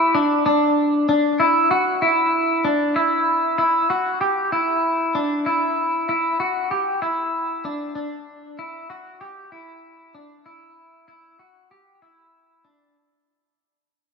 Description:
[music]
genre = dream pop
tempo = 96 BPM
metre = 4/4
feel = straight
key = unclear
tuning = A4 = 440 Hz
[part]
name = clean electric guitar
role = arpeggios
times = 0.0-13.0 s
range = D4 to G4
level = -18 LUFS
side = equal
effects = analog chorus, ping-pong delay
[sound]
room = wet plate reverb, RT60 3.1 s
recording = none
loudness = -18 LUFS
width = side -5 dB against mid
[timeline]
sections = 0.0-13.0 A section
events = fade-out 0.0-13.0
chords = none

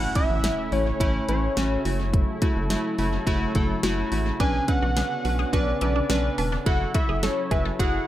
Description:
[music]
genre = synth-pop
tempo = 106 BPM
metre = 4/4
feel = straight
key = F# minor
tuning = A4 = 435 Hz
[part]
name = fat analog lead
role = melody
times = 0.0-8.1 s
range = C#5 to G#5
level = -28 LUFS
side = left 1 dB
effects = phaser, analog delay
[part]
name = warm analog keys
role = accompaniment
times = 0.0-8.0 s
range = A3 to B4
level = -28 LUFS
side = right 1 dB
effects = chorus
[part]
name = sweeping resonant pad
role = sustained chords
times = 0.0-8.1 s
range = C#3 to A4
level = -34 LUFS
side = left 1 dB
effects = chorus
[part]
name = rubbery square bass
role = bass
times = 0.0-8.0 s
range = E1 to B1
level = -27 LUFS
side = equal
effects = none
[part]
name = impact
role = sound effects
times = 0.0-2.1 s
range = none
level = -42 LUFS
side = equal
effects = none
[part]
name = pop drum kit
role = drums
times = 0.2-7.9 s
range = hi-hat, kick drum, snare drum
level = -26 LUFS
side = equal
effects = analog delay
[part]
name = resonant blip pluck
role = arpeggios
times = 4.4-8.0 s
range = D4 to A4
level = -34 LUFS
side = right 1 dB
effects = phaser, analog delay
[sound]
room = moderate spring reverb, RT60 2.1 s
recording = echo-heavy mix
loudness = -21 LUFS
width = side -13 dB against mid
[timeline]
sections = 0.0-8.1 A section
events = impact 0.0-2.1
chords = 0.0 A; 1.9 F#m7; 4.4 Bmadd9; 6.7 F#m7

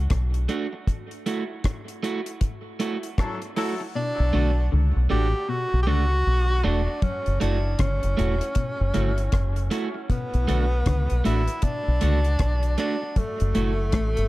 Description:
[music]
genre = dub reggae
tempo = 78 BPM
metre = 4/4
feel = swing 61% on 16ths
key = B minor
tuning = A4 = 439 Hz
[part]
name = deep dub fingered electric bass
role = bass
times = 0.0-14.3 s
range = E1 to C#2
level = -22 LUFS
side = equal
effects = none
[part]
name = deep reggae drum kit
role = drums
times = 0.1-14.3 s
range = hi-hat, kick drum, rim click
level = -27 LUFS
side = equal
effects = none
[part]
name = electric guitar at the edge of break-up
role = accompaniment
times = 0.5-13.7 s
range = A3 to F#4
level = -30 LUFS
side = right 4 dB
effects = dub echo
[part]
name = warm horn section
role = second line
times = 3.2-3.8 s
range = F#3 to A4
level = -35 LUFS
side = left 3 dB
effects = dub echo
[part]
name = clear tenor saxophone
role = melody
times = 4.0-14.3 s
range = A3 to G4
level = -28 LUFS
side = equal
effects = dub echo
[part]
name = clean electric guitar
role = arpeggios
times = 4.0-14.1 s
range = F#2 to D3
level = -33 LUFS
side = left 4 dB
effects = dub echo
[sound]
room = light reverb, studio reverb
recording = dark, warm production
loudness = -22 LUFS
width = side -18 dB against mid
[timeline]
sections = 0.0-14.3 A section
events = break 0.0-4.0; band accent 0.9-4.0; part muted 4.0-7.0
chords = 0.0 Bm7; 0.9 F#m7; 4.0 Bm7; 7.0 F#m7; 10.1 Bm7; 13.2 F#m7

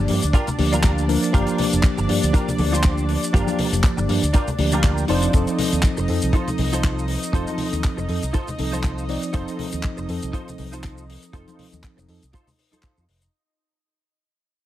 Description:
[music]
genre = nu-disco, nu disco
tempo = 120 BPM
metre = 4/4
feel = swing 56% on 16ths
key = unclear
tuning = A4 = 439 Hz
[part]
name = mellow tine electric piano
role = accompaniment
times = 0.0-12.2 s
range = F3 to D5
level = -24 LUFS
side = equal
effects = medium stereo tremolo, tape echo
[part]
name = lush unison pad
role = sustained chords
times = 0.0-13.4 s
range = D4 to Eb5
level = -31 LUFS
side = equal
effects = chorus, sidechain pumping
[part]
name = fingered electric bass with an envelope filter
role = bass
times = 0.0-13.3 s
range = F1 to G2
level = -24 LUFS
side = equal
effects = none
[part]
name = direct-recorded clean electric guitar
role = riff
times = 0.1-13.0 s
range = D4 to C5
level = -29 LUFS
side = right 2 dB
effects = ensemble chorus, vintage 12-bit sampler grit, tape echo
[part]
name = damped 70s drum kit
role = drums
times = 0.1-13.3 s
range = handclaps, hi-hat, shaker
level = -29 LUFS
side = left 2 dB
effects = studio reverb
[part]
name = kick drum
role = drums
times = 0.3-12.9 s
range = none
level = -19 LUFS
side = equal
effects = studio reverb
[part]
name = congas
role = percussion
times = 0.5-12.8 s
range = none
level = -31 LUFS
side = left 3 dB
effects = none
[sound]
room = studio reverb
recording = none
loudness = -18 LUFS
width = side -13 dB against mid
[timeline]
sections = 0.0-13.3 A section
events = drop 0.0-13.3; fade-out 5.3-13.3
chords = 0.0 Gm7; 5.1 F7

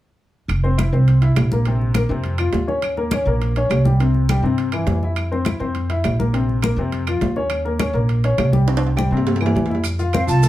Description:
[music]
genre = Afro-Cuban jazz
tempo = 205 BPM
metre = 4/4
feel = straight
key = unclear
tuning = A4 = 441 Hz
[part]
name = upright bass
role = bass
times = 0.5-10.5 s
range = F1 to G2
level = -19 LUFS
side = right 1 dB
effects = none
[part]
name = claves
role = percussion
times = 0.5-10.3 s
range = none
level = -33 LUFS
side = right 4 dB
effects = none
[part]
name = congas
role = percussion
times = 0.5-10.5 s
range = none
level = -26 LUFS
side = left 2 dB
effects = none
[part]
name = timbales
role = percussion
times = 0.5-10.5 s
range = none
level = -27 LUFS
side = right 3 dB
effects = none
[part]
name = clear upright piano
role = accompaniment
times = 0.6-10.5 s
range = C3 to F5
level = -22 LUFS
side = left 3 dB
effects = none
[part]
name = maracas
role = percussion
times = 9.8-10.5 s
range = none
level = -32 LUFS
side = right 6 dB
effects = none
[part]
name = breathy mellow jazz flute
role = melody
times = 10.1-10.5 s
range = F5 to A5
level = -21 LUFS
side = right 3 dB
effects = slapback echo
[sound]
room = wet studio reverb, RT60 0.5 s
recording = heard from further back in the room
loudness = -16 LUFS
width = side -14 dB against mid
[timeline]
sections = 0.5-9.8 A section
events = drum fill 8.7-9.8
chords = 0.5 F5; 1.7 Bbsus2; 2.8 Eb7; 4.0 C; 5.2 F5; 6.3 Bbsus2; 7.5 Eb7; 8.7 C; 9.8 F

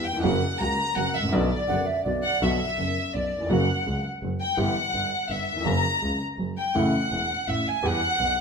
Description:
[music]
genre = tango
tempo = 166 BPM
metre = 3/4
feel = rubato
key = B harmonic minor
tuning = A4 = 440 Hz
[part]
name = warm chamber violin section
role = second line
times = 0.0-8.4 s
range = D5 to A#5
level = -26 LUFS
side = left 1 dB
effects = none
[part]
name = warm baby grand piano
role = accompaniment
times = 0.0-8.3 s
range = E1 to G4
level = -26 LUFS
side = equal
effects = none
[part]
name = clear double bass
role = bass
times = 0.0-8.3 s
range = E1 to E2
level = -32 LUFS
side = right 1 dB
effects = none
[part]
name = breathy mellow concert flute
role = second line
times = 1.7-2.4 s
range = D5 to F#5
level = -28 LUFS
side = right 3 dB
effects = none
[sound]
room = wet large studio reverb, RT60 1.4 s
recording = minimal, uncompressed stereo recording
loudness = -23 LUFS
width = side -6 dB against mid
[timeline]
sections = 0.0-2.4 A section; 2.4-8.4 A section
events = violin section solo 0.0-2.4, 2.4-8.4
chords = 0.2 F#; 1.3 Bm; 3.5 F#; 4.6 Em/G; 5.7 F#; 6.8 A; 7.8 Em

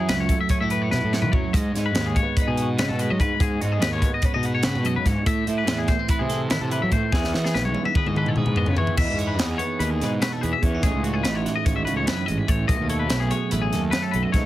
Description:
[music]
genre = math rock and midwest emo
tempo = 291 BPM (eighths)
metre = 9/8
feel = straight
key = E major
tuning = A4 = 438 Hz
[part]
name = twelve-string electric guitar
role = accompaniment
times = 0.0-14.5 s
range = F#2 to B4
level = -27 LUFS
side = right 4 dB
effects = none
[part]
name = twangy electric guitar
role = arpeggios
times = 0.0-14.5 s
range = F#4 to E5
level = -27 LUFS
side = left 6 dB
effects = wide subtle chorus
[part]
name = fuzz fingered electric bass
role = bass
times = 0.0-14.5 s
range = G#1 to F#3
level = -26 LUFS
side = equal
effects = overdrive
[part]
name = crisp fusion drum kit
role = drums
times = 0.1-14.4 s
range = crash cymbal, hi-hat, kick drum, snare drum, toms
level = -24 LUFS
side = equal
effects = none
[sound]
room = little or no reverb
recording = heavily compressed radio sound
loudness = -20 LUFS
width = side -14 dB against mid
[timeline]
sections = 0.0-9.0 A section; 9.0-14.5 B section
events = drum fill 0.9-1.5, 7.1-9.0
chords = 0.0 F#m7; 1.5 G#m7; 5.3 Amadd9; 7.1 Emaj7; 10.8 Amaj9#11; 12.7 B9

